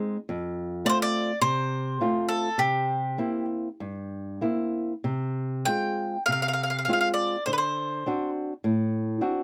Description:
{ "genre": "fado-style ballad", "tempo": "95-105 BPM", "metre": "4/4", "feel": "rubato", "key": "unclear", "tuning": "A4 = 442 Hz", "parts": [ { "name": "nylon-string guitar", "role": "accompaniment", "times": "0.0-9.4 s", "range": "F2 to F#4", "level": "-30 LUFS", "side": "equal", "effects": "none" }, { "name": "mandolin", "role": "melody", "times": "0.9-8.3 s", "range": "G4 to G5", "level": "-28 LUFS", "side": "equal", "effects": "none" } ], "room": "little or no reverb", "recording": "none", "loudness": "-27 LUFS", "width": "mono", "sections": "0.0-9.4 A section", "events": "none", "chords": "0.3 F; 2.6 C7; 5.0 Fm/C; 7.5 D7" }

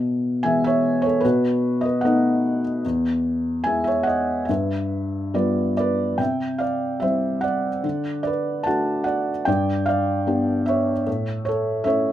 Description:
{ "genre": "classical, lyrical solo piano", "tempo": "74 BPM", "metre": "4/4", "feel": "rubato", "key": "C major from 6.2 s", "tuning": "A4 = 440 Hz", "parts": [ { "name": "felt-muted upright piano", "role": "solo", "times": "0.0-12.1 s", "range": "E2 to A5", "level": "-20 LUFS", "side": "equal", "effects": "none" } ], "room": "moderate studio ambience, RT60 0.5 s", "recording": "none", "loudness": "-20 LUFS", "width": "side -12 dB against mid", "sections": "0.0-6.2 A section; 6.2-12.1 B section", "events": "none", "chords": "0.0 E/B; 1.2 B7; 2.8 E; 4.5 G7; 6.2 C; 7.8 D; 9.5 G; 11.1 A" }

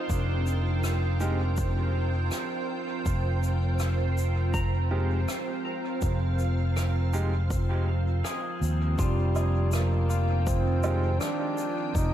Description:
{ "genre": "ambient dub", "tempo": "81 BPM", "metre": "4/4", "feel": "swing 54% on 16ths", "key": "F dorian", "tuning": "A4 = 439 Hz", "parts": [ { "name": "soft additive organ-like pad", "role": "sustained chords", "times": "0.0-12.1 s", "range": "Eb3 to Ab5", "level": "-34 LUFS", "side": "right 1 dB", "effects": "ensemble chorus, built-in reverb" }, { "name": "pedal steel guitar", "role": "arpeggios", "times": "0.0-12.1 s", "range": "D4 to Bb5", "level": "-38 LUFS", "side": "equal", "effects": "tape echo" }, { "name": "bubbling stepped-filter texture", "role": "texture", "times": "0.0-9.0 s", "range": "C5", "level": "-38 LUFS", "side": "right 8 dB", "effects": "chorus, built-in reverb" }, { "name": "fingered electric bass", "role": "bass", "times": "0.1-12.1 s", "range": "F1 to Eb2", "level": "-25 LUFS", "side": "equal", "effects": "none" }, { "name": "electronic kick drum", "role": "drums", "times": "0.1-12.1 s", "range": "none", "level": "-31 LUFS", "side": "equal", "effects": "overdrive" }, { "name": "shaker, rim click and woodblock", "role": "drums", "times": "0.1-12.1 s", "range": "none", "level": "-38 LUFS", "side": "equal", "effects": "dub echo" }, { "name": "clear upright piano", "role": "stabs", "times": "1.2-11.1 s", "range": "Ab3 to G4", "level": "-39 LUFS", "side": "right 3 dB", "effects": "dub echo" }, { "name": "mellow trombone", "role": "melody", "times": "9.0-12.1 s", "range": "G3 to Eb4", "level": "-32 LUFS", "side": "equal", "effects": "dub echo" } ], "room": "light reverb", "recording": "vinyl crackle", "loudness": "-25 LUFS", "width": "side -11 dB against mid", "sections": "0.0-9.0 A section; 9.0-12.1 B section", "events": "none", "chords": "0.0 Fm9" }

